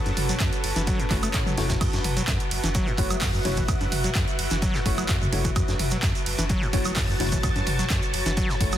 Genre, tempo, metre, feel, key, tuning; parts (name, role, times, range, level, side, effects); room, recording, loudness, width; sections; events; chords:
acid house; 128 BPM; 4/4; straight; F# minor; A4 = 440 Hz
string machine, full ensemble; sustained chords; 0.0-8.8 s; C#4 to A5; -33 LUFS; equal; ensemble chorus, sidechain pumping
airy breathy pad; texture; 0.0-8.8 s; F#4 to A5; -34 LUFS; equal; chorus, sidechain pumping
acid bass, saw; riff; 0.1-8.8 s; F#1 to A3; -29 LUFS; equal; overdrive, tape echo
punchy analog drum machine; drums; 0.1-8.8 s; congas, crash cymbal, handclaps, hi-hat, toms, woodblock; -29 LUFS; right 1 dB; overdrive
shekere; percussion; 0.1-8.8 s; -36 LUFS; right 4 dB
warm sub bass; bass; 0.2-8.8 s; F#1; -31 LUFS; equal; tube saturation, sidechain pumping
vintage drum kit; drums; 0.2-8.8 s; hi-hat, ride cymbal, snare drum; -36 LUFS; equal; high-pass filter on cymbals, high-pass filter on hats, high-pass filter on snare, high-pass filter on room
electronic kick drum; drums; 0.4-8.7 s; -27 LUFS; equal; overdrive
deep mellow chord stab; stabs; 1.1-8.7 s; A3 to C#5; -34 LUFS; left 2 dB; chorus, tape echo
little or no reverb; dense, heavily limited modern master; -22 LUFS; side -11 dB against mid
0.0-8.8 A section
0.0 F#m7